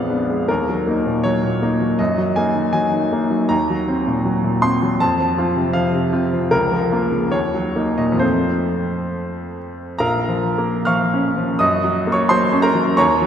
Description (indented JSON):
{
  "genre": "classical, romantic character piece for solo piano",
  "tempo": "65-89 BPM",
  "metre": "2/4",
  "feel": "rubato",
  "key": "Eb minor, Bb minor from 3.5 s",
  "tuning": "A4 = 440 Hz",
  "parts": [
    { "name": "bright baby grand piano", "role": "solo", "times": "0.0-13.3 s", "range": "Bb1 to F6", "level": "-16 LUFS", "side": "equal", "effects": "none" }
  ],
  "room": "wet concert hall reverb, RT60 2.5 s",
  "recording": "none",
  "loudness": "-16 LUFS",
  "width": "side -8 dB against mid",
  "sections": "0.0-10.0 A section; 10.0-13.3 B section",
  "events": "none",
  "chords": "0.5 Ebm; 2.0 Ebm/Gb; 3.5 Cm7b5/Eb; 5.0 F; 6.5 Bbm/Db; 7.3 Ebm7; 8.2 F; 10.0 Bbm; 11.6 Gb",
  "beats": "| 0.48 1.25 | 2.00 2.74 | 3.50 4.25 | 5.01 5.75 | 6.51 7.33 | 8.21 9.12 | 10.00 10.87 | 11.61 12.30 | 12.99"
}